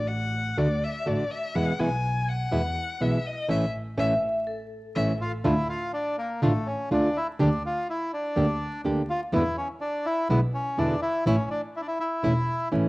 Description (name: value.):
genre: tango.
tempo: 123 BPM.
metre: 4/4.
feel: rubato.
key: D harmonic minor from 5.5 s.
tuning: A4 = 441 Hz.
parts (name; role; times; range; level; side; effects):
warm violin; second line; 0.0-5.1 s; D5 to G#5; -30 LUFS; left 2 dB; none.
dark double bass; bass; 0.0-12.9 s; E1 to E2; -29 LUFS; equal; none.
nylon-string guitar; accompaniment; 0.6-12.9 s; B2 to G4; -26 LUFS; right 1 dB; none.
vibraphone with medium hard mallets; second line; 4.0-5.4 s; A4 to E5; -29 LUFS; equal; none.
bandoneon; melody; 5.2-12.7 s; A3 to F4; -28 LUFS; equal; cassette tape.
room: moderate spring reverb, RT60 1.4 s, studio reverb.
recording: home recording on cassette, vinyl crackle.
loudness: -24 LUFS.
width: side -21 dB against mid.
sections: 0.0-5.5 A section; 5.5-12.9 B section.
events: violin solo 0.0-5.5; band accent 3.5-5.5.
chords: 0.0 D; 1.5 E; 3.5 A; 5.5 Dm; 7.4 Gm/D; 9.3 E7; 11.3 A.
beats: 0.09 0.57 1.06 | 1.55 2.03 2.52 3.00 | 3.49 3.98 4.47 4.96 | 5.45 5.94 6.42 6.91 | 7.40 7.88 8.37 8.85 | 9.33 9.81 10.30 10.78 | 11.26 11.75 12.23 12.72.